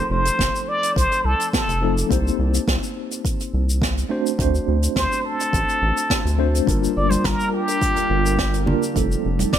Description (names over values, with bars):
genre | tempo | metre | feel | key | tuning
sunset chillout | 105 BPM | 4/4 | straight | G minor | A4 = 440 Hz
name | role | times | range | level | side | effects
trumpet with plunger mute | melody | 0.0-9.6 s | G4 to D5 | -23 LUFS | equal | tape echo
mellow tine electric piano | accompaniment | 0.0-9.6 s | F3 to C5 | -25 LUFS | moving between left 8 dB and right 7 dB | medium stereo tremolo, auto-pan, ping-pong delay
round analog bass | bass | 0.0-9.6 s | F1 to D2 | -22 LUFS | equal | none
jazz brush drum kit | drums | 0.3-9.6 s | hi-hat, shaker, snare drum | -26 LUFS | right 1 dB | none
electronic kick drum | drums | 0.4-9.6 s | none | -25 LUFS | equal | none
airy breathy pad | sustained chords | 6.7-9.6 s | F3 to Bb4 | -27 LUFS | right 1 dB | chorus, vintage 12-bit sampler grit
congas | percussion | 7.1-9.5 s | none | -28 LUFS | right 2 dB | none
room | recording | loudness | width
light reverb, studio reverb | none | -18 LUFS | side -10 dB against mid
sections
0.0-9.6 A section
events
none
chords
0.0 F7; 2.1 Cm7; 4.1 D7; 6.7 Gm7; 9.0 F7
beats
0.39 0.96 1.53 | 2.11 2.68 3.25 3.82 | 4.39 4.96 5.54 6.11 | 6.68 7.25 7.82 8.39 | 8.96 9.54